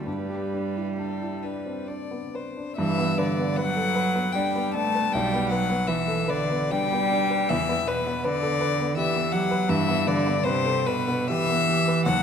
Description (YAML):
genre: classical, slow romantic movement for piano trio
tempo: 63-84 BPM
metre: 3/4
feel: rubato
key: G major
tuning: A4 = 440 Hz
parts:
  - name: rich violin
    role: melody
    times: 0.0-12.2 s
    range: A4 to A5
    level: -26 LUFS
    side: left 6 dB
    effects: none
  - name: rich cello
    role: second line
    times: 0.0-12.2 s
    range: B2 to A3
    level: -27 LUFS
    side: right 5 dB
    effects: none
  - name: warm grand piano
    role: accompaniment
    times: 0.0-12.2 s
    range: B1 to B4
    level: -28 LUFS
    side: left 1 dB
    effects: none
room: wet concert hall reverb, RT60 2.0 s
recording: none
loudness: -22 LUFS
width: side -7 dB against mid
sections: 0.0-2.8 A section; 2.8-12.2 B section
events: none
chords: 0.1 G; 5.1 G/B; 7.5 Em7; 9.7 Em/G